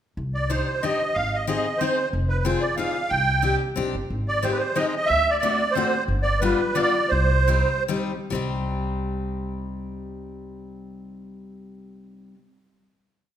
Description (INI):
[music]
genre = musette waltz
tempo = 137-187 BPM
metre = 3/4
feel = straight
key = C harmonic minor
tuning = A4 = 440 Hz
[part]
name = upright bass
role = bass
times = 0.2-12.3 s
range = F1 to D2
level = -26 LUFS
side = equal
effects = none
[part]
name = musette accordion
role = melody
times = 0.3-7.8 s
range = B4 to G5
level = -23 LUFS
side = right 2 dB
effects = none
[part]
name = picked steel-string acoustic guitar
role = accompaniment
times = 0.5-12.4 s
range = G3 to C5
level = -28 LUFS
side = left 4 dB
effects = none
[sound]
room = wet recital hall reverb, RT60 1.5 s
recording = minimal, uncompressed stereo recording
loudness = -21 LUFS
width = side -10 dB against mid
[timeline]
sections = 0.2-8.3 A section; 8.3-10.9 final chord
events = slowing down 6.1-8.3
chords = 0.2 Cmadd9; 1.2 Ab; 2.1 Fm7; 3.1 Cmadd9; 4.1 Abmaj7; 5.1 D7; 6.1 G7; 7.1 Cm